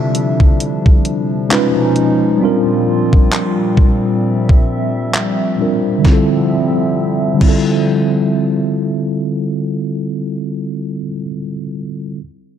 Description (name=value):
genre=contemporary R&B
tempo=66 BPM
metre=4/4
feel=swing 58% on 16ths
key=D minor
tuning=A4 = 438 Hz
part: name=mellow tine electric piano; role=accompaniment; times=0.0-12.2 s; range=D3 to B4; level=-16 LUFS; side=equal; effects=medium stereo tremolo, low-pass filter
part: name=hollow soft pad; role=sustained chords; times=0.0-9.7 s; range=Bb2 to E5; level=-19 LUFS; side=left 1 dB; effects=chorus, sidechain pumping, low-pass filter
part: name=detuned 8-bit digital drum machine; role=drums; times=0.1-7.7 s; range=crash cymbal, handclaps, hi-hat, kick drum, snare drum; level=-13 LUFS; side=equal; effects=none
room=light reverb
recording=dark, warm production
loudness=-13 LUFS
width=side -9 dB against mid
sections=0.0-6.0 A section; 6.0-9.7 B section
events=filter sweep 0.0-6.0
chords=0.0 Dm11; 1.5 C#9; 2.4 C7sus4; 6.0 Dm11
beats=0.59 1.50 | 2.41 3.32 4.23 5.14 | 6.05 6.96 7.87 8.78